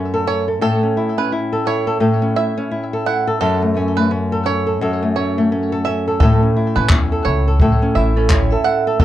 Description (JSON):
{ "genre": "acoustic pop", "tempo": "86 BPM", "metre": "4/4", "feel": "swing 60% on 16ths", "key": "A major", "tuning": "A4 = 442 Hz", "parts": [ { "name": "nylon-string guitar", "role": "accompaniment", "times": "0.0-9.0 s", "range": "F#2 to A4", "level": "-17 LUFS", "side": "left 1 dB", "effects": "none" }, { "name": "bluegrass banjo", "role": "arpeggios", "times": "0.3-9.0 s", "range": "A4 to F#5", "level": "-23 LUFS", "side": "right 6 dB", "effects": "ping-pong delay" }, { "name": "upright bass", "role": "bass", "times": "6.2-9.0 s", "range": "F#1 to E2", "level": "-18 LUFS", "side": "equal", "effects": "none" }, { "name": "jazz brush drum kit", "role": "drums", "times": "6.2-9.0 s", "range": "handclaps, kick drum", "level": "-15 LUFS", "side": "equal", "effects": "none" }, { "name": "vibraphone with medium hard mallets", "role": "second line", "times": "8.2-9.0 s", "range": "C#4 to E5", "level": "-20 LUFS", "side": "right 8 dB", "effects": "none" } ], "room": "light reverb", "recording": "worn, warbling old tape, cassette tape, warbly pitch drift", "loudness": "-14 LUFS", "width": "side -13 dB against mid", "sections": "0.0-9.0 A section", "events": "none", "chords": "0.0 F#m; 0.6 A; 3.4 F#m7; 6.2 A" }